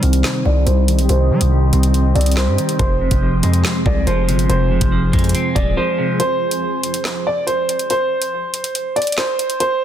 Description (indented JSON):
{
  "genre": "hip hop, drill",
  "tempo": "141 BPM",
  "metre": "4/4",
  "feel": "half-time",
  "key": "unclear",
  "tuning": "A4 = 440 Hz",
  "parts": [
    { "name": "warm upright piano", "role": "melody", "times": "0.0-9.8 s", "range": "C5 to D5", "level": "-20 LUFS", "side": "right 1 dB", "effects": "low-pass filter, digital delay" },
    { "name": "clean electric guitar", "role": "accompaniment", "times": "0.0-6.2 s", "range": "F2 to C5", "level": "-20 LUFS", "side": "equal", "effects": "phaser, low-pass filter" },
    { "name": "granular cloud pad", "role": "sustained chords", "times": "0.0-6.2 s", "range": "F3 to Eb5", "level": "-25 LUFS", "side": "equal", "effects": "built-in reverb, low-pass filter" },
    { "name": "distorted 808-style bass", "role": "bass", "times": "0.0-5.8 s", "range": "Eb1 to G3", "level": "-16 LUFS", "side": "equal", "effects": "distortion" },
    { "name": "drill drum kit", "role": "drums", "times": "0.0-9.7 s", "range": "handclaps, hi-hat, kick drum, snare drum", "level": "-21 LUFS", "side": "equal", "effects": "none" }
  ],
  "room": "little or no reverb",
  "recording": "dense, heavily limited modern master",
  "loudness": "-14 LUFS",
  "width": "side -10 dB against mid",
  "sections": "0.0-6.2 A section; 6.2-9.8 B section",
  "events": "filter sweep 0.0-6.2; break 6.2-9.8",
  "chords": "0.0 Cm; 2.8 Fm; 6.2 N.C."
}